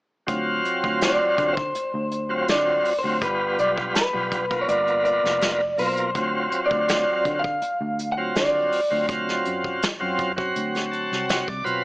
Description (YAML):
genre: straight-eighth soul blues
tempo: 82 BPM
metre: 4/4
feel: straight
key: unclear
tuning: A4 = 443 Hz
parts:
  - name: bright tonewheel organ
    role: accompaniment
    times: 0.3-11.8 s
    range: B2 to A5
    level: -25 LUFS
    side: equal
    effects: slow rotary speaker, overdrive
  - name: vintage muted fingered electric bass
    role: bass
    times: 0.3-11.8 s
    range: F1 to D3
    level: -32 LUFS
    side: equal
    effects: none
  - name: vintage brush drum kit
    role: drums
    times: 0.3-11.8 s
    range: hi-hat, kick drum, snare drum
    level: -27 LUFS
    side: equal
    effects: none
  - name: electric guitar through a small old amp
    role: melody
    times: 1.0-9.1 s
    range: B4 to F#5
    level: -22 LUFS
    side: equal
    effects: wide subtle chorus
room: light reverb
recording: small speaker sound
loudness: -20 LUFS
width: side -21 dB against mid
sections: 0.3-11.8 A section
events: tonewheel organ fill 10.6-11.8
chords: 0.3 D7#9; 3.2 G7#9; 6.2 D7#9